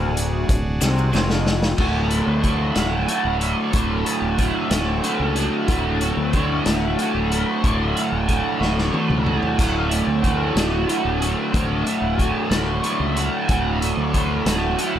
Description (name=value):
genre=psychedelic rock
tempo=62 BPM (dotted quarters)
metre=6/8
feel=straight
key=D major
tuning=A4 = 440 Hz
part: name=overdriven combo organ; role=sustained chords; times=0.0-15.0 s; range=F#3 to A4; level=-31 LUFS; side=right 2 dB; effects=spring reverb
part: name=crunchy overdriven guitar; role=riff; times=0.0-15.0 s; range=D2 to F#4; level=-21 LUFS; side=right 1 dB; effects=flanger
part: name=fingered electric bass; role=bass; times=0.0-15.0 s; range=D1 to D2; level=-24 LUFS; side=equal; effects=none
part: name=vintage drum kit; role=drums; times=0.2-14.9 s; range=crash cymbal, hi-hat, kick drum, snare drum, splash cymbal, toms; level=-24 LUFS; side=equal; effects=none
part: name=maracas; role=percussion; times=0.5-1.2 s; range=none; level=-31 LUFS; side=left 6 dB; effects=none
room=small room ambience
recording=none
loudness=-18 LUFS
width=side -10 dB against mid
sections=0.0-1.8 A section; 1.8-15.0 B section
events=drum fill 0.8-1.8, 8.6-9.6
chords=0.0 D